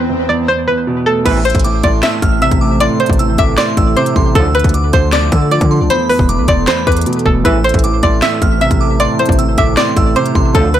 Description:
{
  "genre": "hip hop, trap",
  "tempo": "155 BPM",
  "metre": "4/4",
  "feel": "half-time",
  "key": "A minor",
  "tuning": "A4 = 441 Hz",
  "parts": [
    { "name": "string-like resonator pluck", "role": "melody", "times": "0.0-10.8 s", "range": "A4 to E5", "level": "-16 LUFS", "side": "equal", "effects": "chorus, low-pass filter, tape echo" },
    { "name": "dark baby grand piano", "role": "accompaniment", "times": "0.0-10.8 s", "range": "E2 to D4", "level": "-17 LUFS", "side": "right 2 dB", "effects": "low-pass filter" },
    { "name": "swell", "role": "sound effects", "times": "0.0-0.5 s", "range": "none", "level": "-21 LUFS", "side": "right 1 dB", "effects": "none" },
    { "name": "glassy synth bell", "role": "second line", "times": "1.3-10.8 s", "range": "B5 to F6", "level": "-21 LUFS", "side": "right 3 dB", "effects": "chorus, tape echo" },
    { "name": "dark analog pad", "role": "sustained chords", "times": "2.1-10.8 s", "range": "E3 to A4", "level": "-24 LUFS", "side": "right 1 dB", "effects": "chorus" },
    { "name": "warm brass ensemble", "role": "stabs", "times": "1.3-1.4, 4.4-4.5, 7.4-7.6, 10.5-10.7 s", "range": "E2 to F3", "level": "-23 LUFS", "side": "right 5 dB", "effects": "tape echo" },
    { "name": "hard-hitting 808-style bass", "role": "bass", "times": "1.3-10.8 s", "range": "E1 to D3", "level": "-16 LUFS", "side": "left 1 dB", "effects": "none" },
    { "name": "trap drum kit", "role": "drums", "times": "1.3-10.8 s", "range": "crash cymbal, handclaps, hi-hat, kick drum, snare drum", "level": "-16 LUFS", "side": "left 1 dB", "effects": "none" }
  ],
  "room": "little or no reverb",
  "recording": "blown-out, overdriven recording, overdrive",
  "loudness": "-10 LUFS",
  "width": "side -11 dB against mid",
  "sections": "0.0-1.3 A section; 1.3-10.8 B section",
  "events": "break 0.0-1.3; swell 0.0-1.3",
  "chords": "0.0 Esus4; 1.3 Am; 4.4 Dm; 5.9 Esus4; 7.5 Am"
}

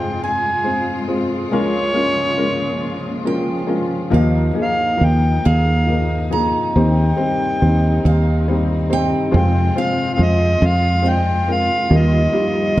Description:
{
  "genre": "acoustic folk-pop ballad",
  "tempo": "46 BPM (dotted quarters)",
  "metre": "6/8",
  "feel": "straight",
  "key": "Eb major",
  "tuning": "A4 = 445 Hz",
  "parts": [
    { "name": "mellow harmonica", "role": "melody", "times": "0.0-12.8 s", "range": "Db5 to Ab5", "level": "-20 LUFS", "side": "equal", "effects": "none" },
    { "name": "felt-muted upright piano", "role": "accompaniment", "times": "0.0-12.8 s", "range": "F1 to C5", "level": "-20 LUFS", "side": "left 1 dB", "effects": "none" },
    { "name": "muted studio string section", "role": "sustained chords", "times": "0.0-12.8 s", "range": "Db3 to F4", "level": "-26 LUFS", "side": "left 1 dB", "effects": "none" },
    { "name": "picked acoustic archtop guitar", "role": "arpeggios", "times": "0.0-12.8 s", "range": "Ab4 to C6", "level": "-28 LUFS", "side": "right 5 dB", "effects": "none" },
    { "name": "fingered electric bass", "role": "bass", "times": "4.1-12.8 s", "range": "Eb2 to F2", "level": "-16 LUFS", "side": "equal", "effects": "none" }
  ],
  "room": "moderate recital hall reverb, RT60 1.3 s",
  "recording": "dark, warm production",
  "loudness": "-15 LUFS",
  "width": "side -15 dB against mid",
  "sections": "0.0-12.8 A section",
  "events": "none",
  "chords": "0.0 Fm; 1.5 Db6; 4.1 Ebsus2; 6.8 Cm/Eb; 9.3 Fm; 11.9 Ebadd9"
}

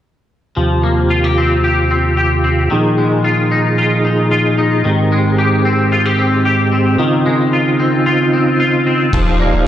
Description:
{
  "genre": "dream pop",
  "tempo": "112 BPM",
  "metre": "4/4",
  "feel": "straight",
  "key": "Eb major",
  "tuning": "A4 = 439 Hz",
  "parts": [
    { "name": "mellow tonewheel organ", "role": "sustained chords", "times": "0.6-9.7 s", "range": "Eb2 to F5", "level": "-14 LUFS", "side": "right 1 dB", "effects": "chorus vibrato, slow rotary speaker" },
    { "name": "twangy electric guitar", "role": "arpeggios", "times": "0.6-9.7 s", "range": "Eb3 to G4", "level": "-15 LUFS", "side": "left 3 dB", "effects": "analog chorus, analog delay" },
    { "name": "warm sub bass", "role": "bass", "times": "9.1-9.7 s", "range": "Eb1", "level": "-16 LUFS", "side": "equal", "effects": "none" },
    { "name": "oversized low-tuned drum kit", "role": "drums", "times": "9.1-9.3 s", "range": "crash cymbal, kick drum", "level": "-18 LUFS", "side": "equal", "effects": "none" },
    { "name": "vibraphone with soft mallets", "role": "texture", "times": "9.4-9.7 s", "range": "D5", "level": "-23 LUFS", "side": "right 4 dB", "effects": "stereo widening" }
  ],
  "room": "moderate concert hall reverb, RT60 1.9 s, studio ambience",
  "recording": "cassette tape",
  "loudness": "-11 LUFS",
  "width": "side -11 dB against mid",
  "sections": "0.6-9.1 A section",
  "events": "none",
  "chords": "0.6 Eb69; 2.7 Bb7sus4; 4.8 Abmaj7; 7.0 Dbmaj9; 9.1 Eb69"
}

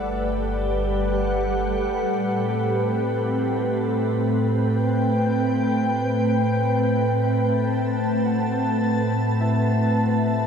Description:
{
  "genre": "ambient",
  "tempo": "free time",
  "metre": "none",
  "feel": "none",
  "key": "unclear",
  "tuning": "A4 = 440 Hz",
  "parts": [
    { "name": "glassy FM pad", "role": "sustained chords", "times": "0.0-10.5 s", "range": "A2 to A5", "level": "-20 LUFS", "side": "equal", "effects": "ensemble chorus, built-in reverb, shimmer reverb" },
    { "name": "warm sub bass", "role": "bass", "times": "0.0-2.1 s", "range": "G1", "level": "-28 LUFS", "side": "equal", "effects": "none" },
    { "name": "muted felt-like synth keys", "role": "arpeggios", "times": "2.5-10.5 s", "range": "B4 to F#5", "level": "-40 LUFS", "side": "right 1 dB", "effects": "none" }
  ],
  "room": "wet cathedral reverb, RT60 6.6 s",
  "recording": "in a vast, echoing space, cassette tape",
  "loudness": "-20 LUFS",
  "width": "side -7 dB against mid",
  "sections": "0.0-2.1 A section; 2.1-10.5 B section",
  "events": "none",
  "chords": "0.0 Gmaj9; 2.1 Am7"
}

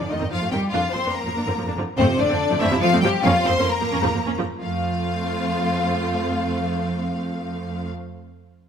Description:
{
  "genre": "quick classical-period movement for string orchestra",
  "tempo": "125-145 BPM",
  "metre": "3/4",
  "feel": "straight",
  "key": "F major",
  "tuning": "A4 = 441 Hz",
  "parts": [
    { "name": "rich studio violin section", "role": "melody", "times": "0.0-7.9 s", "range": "C5 to C6", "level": "-27 LUFS", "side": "left 6 dB", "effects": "none" },
    { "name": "rich studio violin section", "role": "second line", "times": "0.0-7.9 s", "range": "C4 to C5", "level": "-26 LUFS", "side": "left 2 dB", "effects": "none" },
    { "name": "rich studio viola section", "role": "accompaniment", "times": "0.0-7.9 s", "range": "C3 to F4", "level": "-26 LUFS", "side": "right 1 dB", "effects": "none" },
    { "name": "clear studio double bass section", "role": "bass", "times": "0.0-7.9 s", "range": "F2", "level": "-28 LUFS", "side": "right 3 dB", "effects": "none" },
    { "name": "rich studio cello section", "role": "bass", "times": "0.0-7.9 s", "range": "C3 to C4", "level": "-27 LUFS", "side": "right 2 dB", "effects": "none" }
  ],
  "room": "moderate recital hall reverb, RT60 1.7 s",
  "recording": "none",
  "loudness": "-20 LUFS",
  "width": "side -7 dB against mid",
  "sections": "0.0-4.6 A section; 4.6-7.4 B section",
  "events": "slowing down 1.4-4.6",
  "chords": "0.0 F7(no3); 0.7 Bb/F; 2.0 F; 3.2 Bbm/F; 4.6 F"
}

